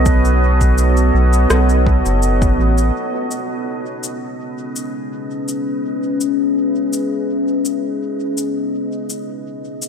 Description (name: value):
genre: ambient dub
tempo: 83 BPM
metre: 4/4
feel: straight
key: C# minor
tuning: A4 = 445 Hz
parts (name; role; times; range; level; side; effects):
- deep dark ambient pad; sustained chords; 0.0-9.9 s; B3 to E5; -18 LUFS; left 1 dB; chorus, built-in reverb
- round analog bass; bass; 0.0-2.9 s; F#1 to B1; -14 LUFS; equal; tube saturation
- electronic kick drum; drums; 0.1-2.6 s; none; -17 LUFS; equal; none
- electronic shaker and rim click; drums; 0.1-9.9 s; none; -24 LUFS; left 2 dB; overdrive, dub echo
room: moderate lush hall reverb, RT60 2.1 s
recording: none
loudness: -15 LUFS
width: side -7 dB against mid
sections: 0.0-3.0 A section; 3.0-9.9 B section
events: filter sweep on ambient pad 3.0-9.9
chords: 0.0 B7; 3.0 C#m7; 8.7 B7